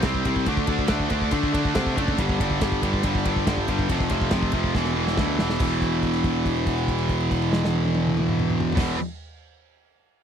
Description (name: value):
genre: heavy metal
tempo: 140 BPM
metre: 4/4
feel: straight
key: E phrygian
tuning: A4 = 439 Hz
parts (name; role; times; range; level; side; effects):
- high-gain distorted guitar; riff; 0.0-9.0 s; E2 to D4; -24 LUFS; equal; distortion
- fuzz picked electric bass; bass; 0.0-8.9 s; E1 to D3; -27 LUFS; equal; overdrive
- modern studio drum kit; drums; 0.0-8.9 s; crash cymbal, kick drum, ride cymbal, snare drum, toms; -27 LUFS; equal; none
room: little or no reverb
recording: dry, close 1970s-style studio recording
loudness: -21 LUFS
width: side -8 dB against mid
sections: 0.0-5.6 A section; 5.6-9.0 B section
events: drum fill 4.8-5.6; held note 5.6-8.8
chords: 0.5 D5; 2.2 G5; 3.9 F5; 4.8 E5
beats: 0.04 | 0.47 0.90 1.32 1.75 | 2.18 2.61 3.04 3.47 | 3.90 4.32 4.75 5.18 | 5.61 6.04 6.46 6.89 | 7.32 7.75 8.17 8.60